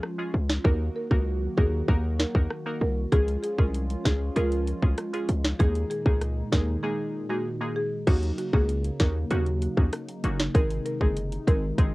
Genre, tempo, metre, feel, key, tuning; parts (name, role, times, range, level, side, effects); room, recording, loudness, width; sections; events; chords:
dancehall; 97 BPM; 4/4; straight; Eb dorian; A4 = 441 Hz
wavetable chord stab; accompaniment; 0.0-11.9 s; Ab3 to Bb4; -34 LUFS; equal; cassette tape
hollow soft pad; sustained chords; 0.0-11.9 s; Bb2 to Gb4; -35 LUFS; equal; chorus, sidechain pumping, cassette tape
island pop drum kit; drums; 0.0-11.9 s; crash cymbal, hi-hat, kick drum, rim click, snare drum; -23 LUFS; equal
hard-hitting 808-style bass; bass; 0.3-11.9 s; Gb1 to Eb2; -26 LUFS; equal
buzzing marimba with medium mallets; melody; 0.6-11.6 s; Gb4 to Bb4; -32 LUFS; equal; cassette tape, analog delay
little or no reverb; home recording on cassette; -23 LUFS; side -21 dB against mid
0.0-8.1 A section; 8.1-11.9 B section
break 6.8-8.1
0.0 Db; 0.6 Ebm; 3.1 Db; 5.6 Absus2; 8.1 Ebm7; 10.5 Ab